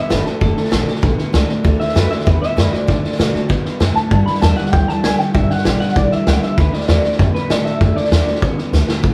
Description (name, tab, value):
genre	rockabilly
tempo	195 BPM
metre	4/4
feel	straight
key	D major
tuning	A4 = 440 Hz
part	electric guitar through a small old amp	melody	0.0-8.6 s	A4 to B5	-24 LUFS	equal	phaser
part	picked steel-string acoustic guitar	accompaniment	0.0-9.1 s	G2 to G4	-28 LUFS	equal	none
part	electric guitar through a small old amp	riff	0.0-9.1 s	G2 to B3	-24 LUFS	equal	none
part	upright bass	bass	0.1-9.1 s	F#1 to B2	-20 LUFS	equal	none
part	vintage drum kit	drums	0.1-9.1 s	hi-hat, kick drum, snare drum	-21 LUFS	equal	none
room	moderate large studio reverb, RT60 0.9 s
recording	band playing live in one room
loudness	-16 LUFS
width	mono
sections	0.0-9.1 A section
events	clean electric guitar solo 0.0-9.1; drum fill 8.7-9.0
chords	0.0 D; 4.1 G; 6.6 D